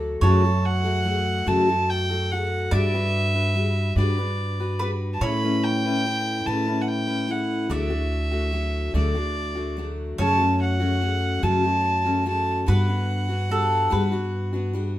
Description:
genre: acoustic folk duo or small band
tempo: 48 BPM (dotted quarters)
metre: 6/8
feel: straight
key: unclear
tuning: A4 = 440 Hz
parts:
  - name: mandolin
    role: second line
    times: 0.0-14.7 s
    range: A4 to D5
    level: -29 LUFS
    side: right 1 dB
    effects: none
  - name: picked steel-string acoustic guitar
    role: accompaniment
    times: 0.0-15.0 s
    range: F#2 to B4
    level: -26 LUFS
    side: left 3 dB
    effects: none
  - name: upright bass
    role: bass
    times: 0.0-15.0 s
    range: D2 to A2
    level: -24 LUFS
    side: equal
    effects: none
  - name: rich fiddle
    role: melody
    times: 0.2-14.7 s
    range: D5 to B5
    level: -26 LUFS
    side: right 1 dB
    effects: none
room: moderate studio reverb, RT60 0.6 s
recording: minimal, uncompressed stereo recording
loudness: -21 LUFS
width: side -14 dB against mid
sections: 0.0-15.0 A section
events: none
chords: 0.2 F#m; 2.7 Gmaj7; 5.2 Aadd9; 7.7 D; 10.2 F#m; 12.7 Gmaj7

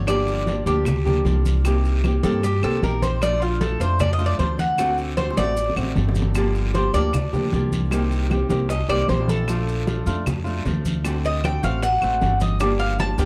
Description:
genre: latin, Cuban son and guajira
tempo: 153 BPM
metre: 4/4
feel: straight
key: G minor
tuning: A4 = 440 Hz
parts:
  - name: nylon-string guitar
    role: accompaniment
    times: 0.0-13.3 s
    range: C3 to G4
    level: -28 LUFS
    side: equal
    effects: none
  - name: Cuban tres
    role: arpeggios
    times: 0.0-13.3 s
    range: F4 to A5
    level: -26 LUFS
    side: equal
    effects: none
  - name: upright bass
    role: bass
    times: 0.0-13.3 s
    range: G1 to G2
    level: -25 LUFS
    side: equal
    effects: none
  - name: bongos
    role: percussion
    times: 0.1-13.3 s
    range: none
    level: -36 LUFS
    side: equal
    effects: none
  - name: claves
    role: percussion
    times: 0.1-12.8 s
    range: none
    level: -37 LUFS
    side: equal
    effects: none
  - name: congas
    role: percussion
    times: 0.1-13.3 s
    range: none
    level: -29 LUFS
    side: equal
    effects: none
  - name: guiro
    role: percussion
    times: 0.1-13.3 s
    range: none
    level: -41 LUFS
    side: equal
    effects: none
  - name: maracas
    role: percussion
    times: 0.1-13.3 s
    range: none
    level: -45 LUFS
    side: equal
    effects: none
room: light reverb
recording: dark, warm production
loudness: -21 LUFS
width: mono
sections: 0.0-13.3 A section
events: Cuban tres solo 0.0-13.3; drum fill 5.2-6.4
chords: 0.1 Gm7; 1.6 Cm7; 3.2 Bbmaj7; 4.8 D7; 6.4 Gm7; 7.9 Cm7; 9.5 Bbmaj7; 11.0 D7; 12.6 Gm7

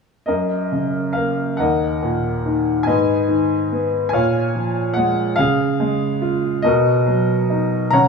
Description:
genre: classical, lyrical solo piano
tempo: 47 BPM (dotted quarters)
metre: 6/8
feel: rubato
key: F# major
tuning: A4 = 440 Hz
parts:
  - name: clear upright piano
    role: solo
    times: 0.3-8.1 s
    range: D#2 to A#5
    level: -16 LUFS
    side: equal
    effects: none
room: moderate recital hall reverb, RT60 1.7 s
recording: none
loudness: -17 LUFS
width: side -4 dB against mid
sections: 0.3-8.1 A section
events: none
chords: 0.3 F#6; 1.6 D#m; 2.9 G#m; 4.1 A#m7; 5.4 C#; 6.6 Bmaj7

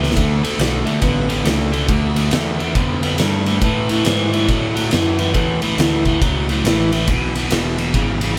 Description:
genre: blues rock power trio and southern rock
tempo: 139 BPM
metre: 4/4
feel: swing 64% on 8ths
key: A major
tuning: A4 = 440 Hz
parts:
  - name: crunchy overdriven guitar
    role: riff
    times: 0.0-8.4 s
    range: E2 to B3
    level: -21 LUFS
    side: equal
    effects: none
  - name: growling picked electric bass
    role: bass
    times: 0.0-8.4 s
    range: E1 to A2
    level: -24 LUFS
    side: equal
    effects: overdrive
  - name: oversized low-tuned drum kit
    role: drums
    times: 0.0-8.3 s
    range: kick drum, ride cymbal, snare drum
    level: -22 LUFS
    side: equal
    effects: none
room: moderate studio reverb, RT60 0.5 s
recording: band playing live in one room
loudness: -18 LUFS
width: mono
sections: 0.0-8.4 A section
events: drum fill 0.0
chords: 0.2 D5; 1.9 Dm; 3.6 A; 7.1 E

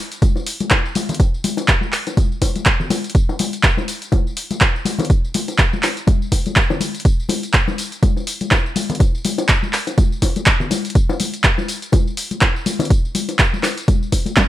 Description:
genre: house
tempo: 123 BPM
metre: 4/4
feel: swing 57% on 16ths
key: none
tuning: none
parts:
  - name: punchy analog drum machine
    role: drums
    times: 0.1-14.5 s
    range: handclaps, hi-hat, snare drum, tambourine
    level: -20 LUFS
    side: right 1 dB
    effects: none
  - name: electronic kick drum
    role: drums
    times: 0.2-14.5 s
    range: none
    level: -16 LUFS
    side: equal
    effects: none
  - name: congas and bongos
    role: percussion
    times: 0.2-14.3 s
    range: none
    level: -23 LUFS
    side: left 5 dB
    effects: none
room: little or no reverb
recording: none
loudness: -15 LUFS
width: side -14 dB against mid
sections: 0.0-14.5 A section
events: none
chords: none

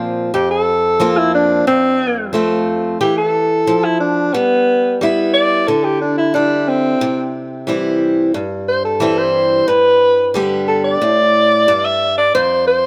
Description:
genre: country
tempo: 90 BPM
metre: 4/4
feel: straight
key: unclear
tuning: A4 = 439 Hz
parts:
  - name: picked old ladder-braced acoustic guitar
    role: accompaniment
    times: 0.0-12.9 s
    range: F2 to G4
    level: -20 LUFS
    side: equal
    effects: none
  - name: breathy alto saxophone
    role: melody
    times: 0.3-12.9 s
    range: B3 to E5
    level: -16 LUFS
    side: equal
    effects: none
room: moderate plate reverb, RT60 2.9 s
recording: none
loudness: -15 LUFS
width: mono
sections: 0.0-12.9 A section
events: alto saxophone solo 0.0-12.9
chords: 0.0 Bbsus2; 1.7 F; 4.3 G6; 7.0 C; 9.7 G; 12.3 F5

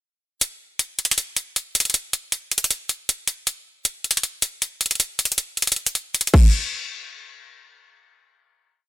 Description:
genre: hip hop, trap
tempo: 157 BPM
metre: 4/4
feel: half-time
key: none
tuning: none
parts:
  - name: trap drum kit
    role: drums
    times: 0.4-6.4 s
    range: crash cymbal, hi-hat, kick drum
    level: -18 LUFS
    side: equal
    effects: none
room: little or no reverb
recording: none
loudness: -20 LUFS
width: side -17 dB against mid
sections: 0.4-6.5 breakdown; 6.5-8.9 final hit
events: kick muted 5.0-6.5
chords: none

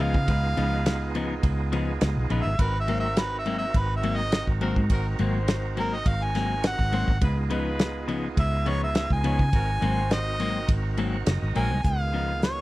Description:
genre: straight-eighth soul blues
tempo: 104 BPM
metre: 4/4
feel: straight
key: unclear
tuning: A4 = 439 Hz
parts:
  - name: clear harmonica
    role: melody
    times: 0.0-12.6 s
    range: Bb4 to Ab5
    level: -29 LUFS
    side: equal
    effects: overdrive
  - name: tonewheel organ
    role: accompaniment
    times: 0.0-12.6 s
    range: Eb3 to Gb5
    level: -34 LUFS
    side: right 5 dB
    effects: slow rotary speaker, overdrive
  - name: mellow horn section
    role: sustained chords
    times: 0.0-11.7 s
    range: C4 to Db5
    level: -36 LUFS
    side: left 2 dB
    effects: none
  - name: clean electric guitar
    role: stabs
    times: 0.0-12.3 s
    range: Ab2 to Eb4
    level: -30 LUFS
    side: left 4 dB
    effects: spring reverb
  - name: vintage muted fingered electric bass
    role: bass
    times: 0.0-12.6 s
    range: Gb1 to Db3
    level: -27 LUFS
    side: equal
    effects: none
  - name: warm soul drum kit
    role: drums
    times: 0.1-12.6 s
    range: hi-hat, kick drum, ride cymbal, snare drum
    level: -26 LUFS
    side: equal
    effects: none
room: little or no reverb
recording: none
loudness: -23 LUFS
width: side -18 dB against mid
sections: 0.0-11.9 A section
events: harmonica solo 0.0-11.9; tonewheel organ fill 10.7-11.9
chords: 0.0 Db9; 2.6 Ab9; 7.2 Db9; 9.5 Ab9; 11.9 Db9

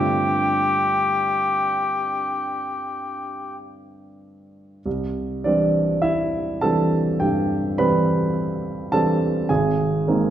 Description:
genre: classical, impressionist duo for cor anglais and grand piano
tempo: 46-53 BPM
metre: 4/4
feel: rubato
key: C major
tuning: A4 = 440 Hz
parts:
  - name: mellow cor anglais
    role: melody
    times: 0.0-3.6 s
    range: G4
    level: -21 LUFS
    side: left 2 dB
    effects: none
  - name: warm grand piano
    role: accompaniment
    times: 0.0-10.3 s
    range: Ab1 to B5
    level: -21 LUFS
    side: right 1 dB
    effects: none
room: wet recital hall reverb, RT60 1.4 s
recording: dark, warm production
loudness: -19 LUFS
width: side -10 dB against mid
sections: 0.0-4.9 A section; 4.9-10.3 B section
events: none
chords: 0.0 G9sus4; 4.9 Cmaj9; 9.5 Abadd9

